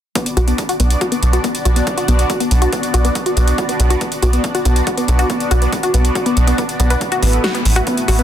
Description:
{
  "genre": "uplifting trance",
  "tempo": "140 BPM",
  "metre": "4/4",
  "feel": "straight",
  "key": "B minor",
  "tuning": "A4 = 440 Hz",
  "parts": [
    { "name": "wide unison pluck", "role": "arpeggios", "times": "0.2-8.2 s", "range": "B3 to B4", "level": "-20 LUFS", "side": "left 2 dB", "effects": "sidechain pumping, digital delay" },
    { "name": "big-room dance drum kit", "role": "drums", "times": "0.2-8.2 s", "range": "hi-hat, snare drum", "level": "-24 LUFS", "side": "equal", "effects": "none" },
    { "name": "electronic kick drum", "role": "drums", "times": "0.2-8.0 s", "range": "none", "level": "-24 LUFS", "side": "right 1 dB", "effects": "high-pass filter on kick, high-pass filter on room" },
    { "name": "tight sequencer bass", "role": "bass", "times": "0.4-8.2 s", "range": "A1 to B1", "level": "-14 LUFS", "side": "equal", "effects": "sidechain pumping" }
  ],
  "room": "light reverb, digital ambience",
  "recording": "dense, heavily limited modern master",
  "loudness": "-13 LUFS",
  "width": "side -10 dB against mid",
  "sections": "0.2-8.2 A section",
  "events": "filter sweep on synth pluck 0.2-8.2",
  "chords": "0.2 Bm; 7.0 Asus2"
}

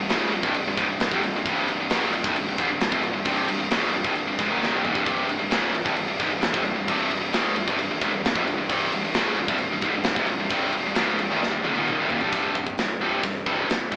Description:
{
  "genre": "heavy metal",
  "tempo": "132 BPM",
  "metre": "4/4",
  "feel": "straight",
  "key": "C minor",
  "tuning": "A4 = 439 Hz",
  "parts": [
    { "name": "high-gain distorted guitar", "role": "riff", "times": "0.0-14.0 s", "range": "C2 to Eb3", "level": "-26 LUFS", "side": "equal", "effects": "distortion" },
    { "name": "growling picked electric bass", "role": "bass", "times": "0.0-14.0 s", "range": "C1 to F1", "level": "-37 LUFS", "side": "equal", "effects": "overdrive" },
    { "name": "tight metal drum kit", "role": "drums", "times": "0.1-14.0 s", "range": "crash cymbal, hi-hat, kick drum, snare drum, toms", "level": "-29 LUFS", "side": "equal", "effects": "none" }
  ],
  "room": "moderate large studio reverb, RT60 0.9 s",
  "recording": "band playing live in one room, AM radio sound",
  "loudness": "-24 LUFS",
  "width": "mono",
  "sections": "0.0-12.3 A section; 12.3-14.0 B section",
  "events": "drum fill 4.6-5.1, 11.4-12.3",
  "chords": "0.0 Cm; 12.3 C5"
}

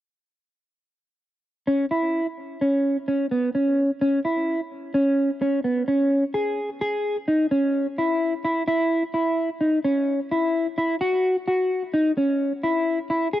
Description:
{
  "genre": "progressive instrumental, progressive",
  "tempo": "129 BPM",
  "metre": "5/4",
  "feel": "straight",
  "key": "unclear",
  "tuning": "A4 = 440 Hz",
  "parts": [
    { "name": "mellow electric guitar", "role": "solo", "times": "1.7-13.4 s", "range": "B3 to G#4", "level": "-21 LUFS", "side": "equal", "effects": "analog chorus, tape echo" }
  ],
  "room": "light reverb",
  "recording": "dry, gritty hardware recording",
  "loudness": "-21 LUFS",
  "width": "side -13 dB against mid",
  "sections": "1.7-6.3 A section; 6.3-13.4 B section",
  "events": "none",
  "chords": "none"
}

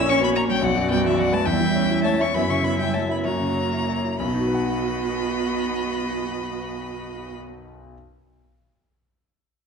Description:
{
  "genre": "quick classical-period movement for piano quintet",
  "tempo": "62-74 BPM (dotted quarters)",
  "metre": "6/8",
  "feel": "rubato",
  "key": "unclear",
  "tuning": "A4 = 440 Hz",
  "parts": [
    { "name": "rich violin", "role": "melody", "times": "0.0-7.3 s", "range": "E5 to E6", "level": "-28 LUFS", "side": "left 6 dB", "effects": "none" },
    { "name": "rich violin", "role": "second line", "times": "0.0-7.3 s", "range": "C#5 to E5", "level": "-31 LUFS", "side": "left 3 dB", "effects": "none" },
    { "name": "warm cello", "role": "second line", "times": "0.0-7.4 s", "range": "E3 to C#4", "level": "-27 LUFS", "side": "right 7 dB", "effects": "none" },
    { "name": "clear concert grand piano", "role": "accompaniment", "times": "0.0-8.0 s", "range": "A#1 to F#5", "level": "-25 LUFS", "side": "left 2 dB", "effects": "none" },
    { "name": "warm viola", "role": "accompaniment", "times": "0.0-7.4 s", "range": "C#4 to F#4", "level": "-30 LUFS", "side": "right 5 dB", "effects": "none" }
  ],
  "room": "wet recital hall reverb, RT60 1.4 s",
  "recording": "dark, warm production",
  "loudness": "-20 LUFS",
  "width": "side -6 dB against mid",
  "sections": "0.0-4.2 A section; 4.2-7.9 B section",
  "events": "slowing down 0.0-4.2",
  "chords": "0.0 F#/A#; 0.6 Bm; 1.5 C#dim/E; 2.4 F#5; 4.2 B"
}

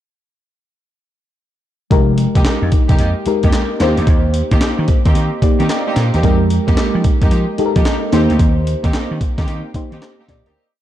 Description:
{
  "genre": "R&B, new jack swing",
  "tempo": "111 BPM",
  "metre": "4/4",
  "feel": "swing 65% on 16ths",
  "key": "unclear",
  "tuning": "A4 = 440 Hz",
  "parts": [
    { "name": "mellow FM electric piano", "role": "accompaniment", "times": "1.9-10.7 s", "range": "Ab3 to Eb5", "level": "-19 LUFS", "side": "left 2 dB", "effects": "chorus, phaser" },
    { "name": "vintage slap bass", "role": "bass", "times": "1.9-10.5 s", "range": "F1 to F3", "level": "-17 LUFS", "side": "equal", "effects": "none" },
    { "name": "breakbeat sampler-style drum kit", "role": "drums", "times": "1.9-10.6 s", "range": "handclaps, hi-hat, kick drum, snare drum", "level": "-16 LUFS", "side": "equal", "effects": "overdrive, vintage 12-bit sampler grit" },
    { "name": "warm studio string section", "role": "stabs", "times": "2.4-10.6 s", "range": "Ab3 to G4", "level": "-22 LUFS", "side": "right 3 dB", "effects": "digital delay" }
  ],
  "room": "digital ambience",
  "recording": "dark, warm production",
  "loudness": "-12 LUFS",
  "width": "side -12 dB against mid",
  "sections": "1.9-10.6 verse",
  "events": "fade-out 8.4-10.6",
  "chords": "1.9 Fm11; 3.8 Eb6; 6.2 Fm11; 8.1 Eb6"
}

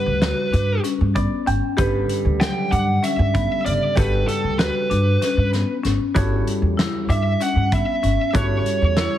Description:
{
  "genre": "progressive instrumental, band music in an uneven meter",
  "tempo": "192 BPM (eighths)",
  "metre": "7/8",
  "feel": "straight",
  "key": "G lydian",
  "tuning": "A4 = 444 Hz",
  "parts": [
    { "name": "high-gain lead guitar", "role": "melody", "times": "0.0-9.2 s", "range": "A4 to G5", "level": "-23 LUFS", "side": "right 2 dB", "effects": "distortion, analog delay" },
    { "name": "vintage hollow-body jazz guitar", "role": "accompaniment", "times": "0.0-9.2 s", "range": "D3 to G5", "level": "-26 LUFS", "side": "equal", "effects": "none" },
    { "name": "upright bass", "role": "bass", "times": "0.1-9.1 s", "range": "G1 to G2", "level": "-21 LUFS", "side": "equal", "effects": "none" },
    { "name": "marimba with hard mallets", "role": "arpeggios", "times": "0.2-9.2 s", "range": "C#3 to G4", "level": "-26 LUFS", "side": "left 6 dB", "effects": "none" },
    { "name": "loose indie drum kit", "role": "drums", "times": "0.2-9.1 s", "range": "hi-hat, kick drum, snare drum", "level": "-24 LUFS", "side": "equal", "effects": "none" },
    { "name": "egg shaker", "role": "percussion", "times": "0.5-8.6 s", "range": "none", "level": "-43 LUFS", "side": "right 5 dB", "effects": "none" }
  ],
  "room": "light reverb, small room ambience",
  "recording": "heavily compressed radio sound",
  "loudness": "-18 LUFS",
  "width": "side -11 dB against mid",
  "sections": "0.0-9.2 A section",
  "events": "hollow-body jazz guitar fill 0.8-1.8",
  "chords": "0.0 Gmaj7; 6.2 A/G"
}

